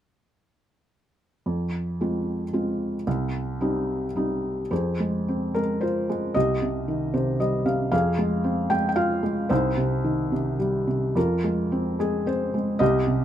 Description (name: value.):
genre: classical, lyrical solo piano.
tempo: 111 BPM.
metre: 3/4.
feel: uneven beats, rubato.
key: F minor.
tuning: A4 = 438 Hz.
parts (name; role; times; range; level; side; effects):
felt-muted upright piano; solo; 1.5-13.2 s; C2 to G5; -22 LUFS; equal; none.
room: light reverb.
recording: close, detailed microphones.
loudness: -22 LUFS.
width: side -10 dB against mid.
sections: 1.5-4.7 A section; 4.7-13.2 B section.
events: felt piano fill 6.9-7.9.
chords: 1.5 Fm; 3.1 Cm; 4.7 Fm; 6.4 Cm; 7.9 Fm; 9.5 Cm; 11.2 Fm.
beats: | 1.46 2.00 2.53 | 3.06 3.60 4.16 | 4.71 5.27 5.82 | 6.36 6.88 7.41 | 7.93 8.45 8.97 | 9.51 10.05 10.60 | 11.16 11.72 12.27 | 12.81.